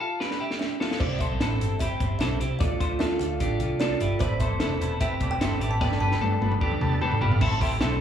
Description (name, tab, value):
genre	jangly indie pop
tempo	150 BPM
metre	4/4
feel	straight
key	A minor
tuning	A4 = 440 Hz
part	kalimba	melody	0.0-6.8 s	C5 to A5	-34 LUFS	right 2 dB	slapback echo
part	twelve-string electric guitar	arpeggios	0.0-8.0 s	D4 to D5	-31 LUFS	left 5 dB	slapback echo
part	compact cocktail drum kit	drums	0.2-7.9 s	crash cymbal, hi-hat, kick drum, snare drum, toms	-27 LUFS	right 1 dB	none
part	electric guitar through a small old amp	accompaniment	1.0-8.0 s	A2 to C5	-32 LUFS	right 4 dB	ensemble chorus, slapback echo
part	vintage muted fingered electric bass	bass	1.0-8.0 s	E1 to D3	-28 LUFS	equal	none
part	overdriven combo organ	accompaniment	4.2-7.9 s	B3 to A5	-34 LUFS	right 1 dB	slapback echo
part	glockenspiel with soft plastic mallets	second line	7.4-8.0 s	B5	-36 LUFS	equal	slapback echo
room	light reverb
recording	live gig heard through the venue's PA, club reverb, small room reverb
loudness	-23 LUFS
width	side -9 dB against mid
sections	0.0-1.0 A section; 1.0-7.4 B section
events	break 0.0-1.0; drum fill 0.2-1.0, 5.8-7.4; transistor combo organ fill 6.6-7.4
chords	0.0 Em; 1.0 C; 2.6 Dm; 4.2 Amadd9; 5.8 Gadd9; 7.4 Am